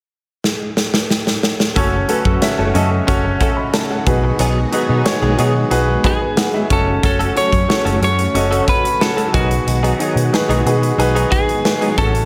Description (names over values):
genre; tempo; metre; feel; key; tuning
1980s-style pop; 91 BPM; 4/4; straight; F# dorian; A4 = 440 Hz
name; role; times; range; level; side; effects
big rock drum kit; drums; 0.4-12.3 s; hi-hat, kick drum, snare drum; -21 LUFS; equal; gated reverb
clear baby grand piano; accompaniment; 1.8-12.3 s; A2 to C#6; -22 LUFS; equal; none
string machine, full ensemble; sustained chords; 1.8-12.3 s; C#3 to F#4; -28 LUFS; equal; phaser, ensemble chorus
direct-recorded clean electric guitar; riff; 1.8-12.2 s; F#3 to A4; -26 LUFS; equal; tube saturation, ensemble chorus
vintage muted fingered electric bass; bass; 1.8-12.3 s; F#1 to B2; -21 LUFS; equal; none
lightly driven lead guitar; melody; 6.1-12.3 s; F#4 to C#5; -22 LUFS; equal; none
room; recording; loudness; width
light reverb; none; -16 LUFS; mono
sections
0.0-1.8 A section; 1.8-7.0 B section; 7.0-12.3 C section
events
drum fill 0.4-1.8; grand piano fill 5.7-7.0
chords
0.0 N.C.; 1.8 F#m; 4.1 B6; 6.7 F#m; 9.3 B6